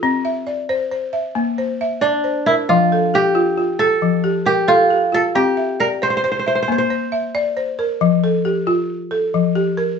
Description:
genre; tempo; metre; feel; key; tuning
west african traditional, West African string and xylophone music; 90 BPM (dotted quarters); 12/8; straight; F major; A4 = 440 Hz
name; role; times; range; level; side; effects
balafon; arpeggios; 0.0-10.0 s; F3 to E5; -18 LUFS; left 2 dB; none
kora; melody; 2.0-8.0 s; D4 to C5; -16 LUFS; right 1 dB; none
room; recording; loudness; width
wet studio ambience, RT60 0.5 s; band playing live in one room, nothing above 7.8 kHz; -15 LUFS; side -6 dB against mid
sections
0.0-10.0 A section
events
none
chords
0.0 C; 1.4 Bb; 2.7 F; 5.3 C; 6.7 Bb; 8.0 F

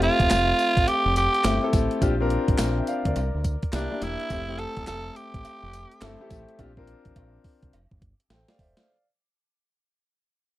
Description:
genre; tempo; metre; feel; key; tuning
R&B, new jack swing; 105 BPM; 4/4; swing 63% on 16ths; F major; A4 = 440 Hz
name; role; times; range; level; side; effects
raspy tenor saxophone; melody; 0.0-6.3 s; D4 to A4; -25 LUFS; right 2 dB; none
warm concert grand piano; accompaniment; 0.0-9.0 s; A3 to G5; -29 LUFS; left 3 dB; none
deep dub fingered electric bass; bass; 0.0-8.7 s; E1 to D2; -28 LUFS; equal; none
gated 80s digital drum machine; drums; 0.0-8.9 s; handclaps, hi-hat, kick drum, snare drum, tambourine; -26 LUFS; equal; gated reverb, gated reverb snare
cowbell; percussion; 0.3-8.5 s; none; -42 LUFS; right 4 dB; none
room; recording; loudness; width
little or no reverb; dry, close 1970s-style studio recording; -21 LUFS; side -15 dB against mid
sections
0.0-8.9 A section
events
fade-out 0.0-8.9; drum fill 6.6-8.9; grand piano fill 8.0-8.9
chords
0.0 Fmaj9; 2.0 Bb69; 3.2 C7; 4.3 Fmaj9; 6.6 Bbadd9; 7.7 Fmaj7

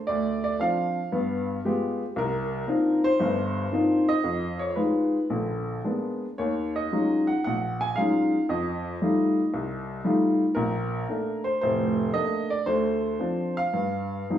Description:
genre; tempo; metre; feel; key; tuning
solo jazz; 115 BPM; 4/4; swing 69% on 8ths, rubato; Bb major; A4 = 440 Hz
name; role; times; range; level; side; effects
warm upright piano; solo; 0.0-14.4 s; F1 to Ab5; -23 LUFS; equal; none
room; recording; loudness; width
wet studio reverb, RT60 0.8 s; heard from further back in the room, studio reverb; -23 LUFS; side -10 dB against mid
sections
0.0-14.4 A section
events
none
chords
0.1 Dm7; 1.1 G7b9; 2.2 Cm11; 4.2 Fm7b5; 5.3 Bb7b9; 6.4 Ebm11; 8.5 F9; 10.6 Bbmaj7; 12.7 Dm7; 13.7 Gaug7

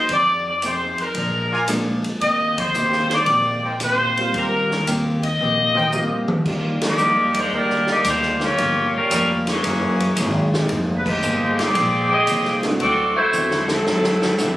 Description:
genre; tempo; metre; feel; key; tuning
jazz, big band swing; 113 BPM; 4/4; swing 69% on 8ths; Eb major; A4 = 440 Hz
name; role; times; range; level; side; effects
bright saxophone section; melody; 0.0-14.6 s; Fb3 to Eb5; -19 LUFS; equal; none
upright bass; bass; 0.0-14.6 s; F1 to Bb2; -27 LUFS; equal; none
picked steel-string acoustic guitar; accompaniment; 0.1-14.6 s; G2 to Ab4; -26 LUFS; equal; none
swinging big-band drum kit; drums; 0.1-14.6 s; crash cymbal, hi-hat, kick drum, ride cymbal, rim click, snare drum, toms; -26 LUFS; equal; none
warm trumpet section; stabs; 1.5-5.9 s; Eb4 to Ab5; -25 LUFS; equal; none
warm upright piano; accompaniment; 1.7-12.8 s; G3 to D5; -25 LUFS; right 1 dB; none
room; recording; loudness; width
light reverb; recorded on a phone in the room, club reverb, compression; -17 LUFS; side -15 dB against mid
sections
0.0-6.5 A section; 6.5-14.6 B section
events
band accent 2.5, 6.7, 11.0; drum fill 5.4-6.5, 13.3-14.4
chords
0.1 Fm7; 1.2 Bb7; 2.2 Eb6; 6.5 Ebmaj7; 8.6 Gm7b5; 9.6 Gb9; 10.7 Fm11; 12.8 D9

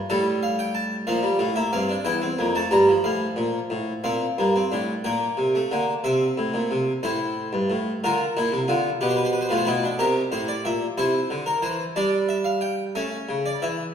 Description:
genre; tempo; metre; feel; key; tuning
classical, baroque-style 3-part fugue for harpsichord; 60 BPM (dotted quarters); 6/8; straight; Bb major; A4 = 438 Hz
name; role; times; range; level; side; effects
harpsichord; solo; 0.0-13.9 s; E2 to Bb5; -21 LUFS; equal; none
room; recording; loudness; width
wet recital hall reverb, RT60 1.5 s; heard from further back in the room; -21 LUFS; side -8 dB against mid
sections
0.0-4.0 A section; 4.0-13.9 B section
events
none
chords
0.1 F/A; 1.1 Gm7; 2.1 Edim; 3.0 F/A; 4.0 Bb; 5.0 Gm/Bb; 6.0 C; 7.0 Am; 8.0 Bb; 9.0 G7/B; 10.0 C; 11.0 C7; 12.0 G5; 12.9 A

